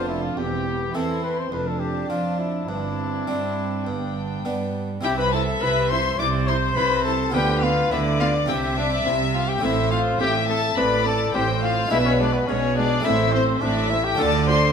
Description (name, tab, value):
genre	classical, baroque-style concerto movement with solo episodes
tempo	105 BPM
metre	4/4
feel	straight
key	C major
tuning	A4 = 441 Hz
part	mellow trumpet	melody	0.0-14.7 s	B3 to D5	-26 LUFS	left 3 dB	none
part	rich chamber violin section	melody	0.0-14.7 s	B4 to D6	-27 LUFS	left 5 dB	none
part	rich chamber violin section	second line	0.0-14.7 s	D4 to E5	-28 LUFS	left 2 dB	none
part	dark chamber viola section	accompaniment	0.0-14.6 s	G#3 to F4	-32 LUFS	right 2 dB	none
part	harpsichord	accompaniment	0.0-14.7 s	E2 to G#4	-29 LUFS	right 1 dB	none
part	rich chamber cello section	bass	0.0-14.7 s	E2 to G3	-28 LUFS	right 2 dB	none
part	warm studio double bass section	bass	0.0-14.7 s	E1 to G2	-28 LUFS	right 5 dB	none
room	wet recital hall reverb, RT60 1.5 s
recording	none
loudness	-20 LUFS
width	side -7 dB against mid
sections	0.0-5.0 A section; 5.0-14.7 B section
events	none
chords	0.4 C/E; 1.5 Dm/F; 2.7 Gsus4; 3.9 G; 5.0 C; 7.3 Bdim/D; 8.5 C; 9.6 Am; 11.9 G#dim/B; 13.0 Am; 14.2 Dm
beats	| 0.38 0.95 1.52 2.10 | 2.69 3.28 3.87 4.46 | 5.04 5.61 6.19 6.76 | 7.34 7.91 8.48 9.05 | 9.62 10.20 10.77 11.34 | 11.91 12.48 13.05 13.62 | 14.18